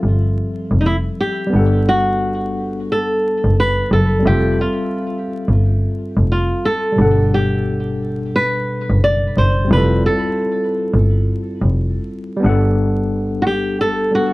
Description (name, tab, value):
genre	lo-fi hip hop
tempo	88 BPM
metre	4/4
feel	swing 60% on 16ths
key	G major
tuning	A4 = 440 Hz
part	flamenco guitar	melody	0.0-14.3 s	Eb4 to D5	-19 LUFS	equal	low-pass filter, tape echo
part	tine electric piano	accompaniment	0.0-14.3 s	B2 to F#5	-21 LUFS	left 1 dB	medium stereo tremolo, low-pass filter
part	bright double bass	bass	0.0-14.3 s	F1 to G1	-16 LUFS	equal	none
room	light reverb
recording	vinyl crackle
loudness	-15 LUFS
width	side -20 dB against mid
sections	0.0-14.3 A section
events	none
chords	0.0 Fmaj7; 1.5 Gmaj9; 4.3 Fmaj7; 7.0 Gmaj9; 9.7 Fmaj7; 12.4 Gmaj9